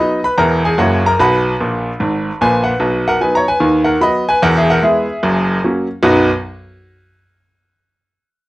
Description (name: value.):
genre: jazz, stride piano.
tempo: 148 BPM.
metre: 4/4.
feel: swing 59% on 8ths.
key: B major.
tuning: A4 = 440 Hz.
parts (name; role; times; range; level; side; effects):
bright concert grand piano; solo; 0.0-6.3 s; E1 to D#6; -12 LUFS; equal; none.
room: moderate studio reverb, RT60 0.6 s.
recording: home recording on cassette.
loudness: -12 LUFS.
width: side -18 dB against mid.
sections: 0.0-2.8 A section; 2.8-6.0 B section; 6.0-7.7 C section.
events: grand piano fill 1.6-2.8.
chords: 0.4 E; 0.8 F#7; 1.2 B5; 2.8 B; 3.6 B/D#; 4.4 E; 5.2 F#; 6.0 B.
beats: 0.36 0.77 | 1.18 1.58 1.99 2.39 | 2.80 3.20 3.61 4.01 | 4.42 4.82 5.23 5.63 | 6.04.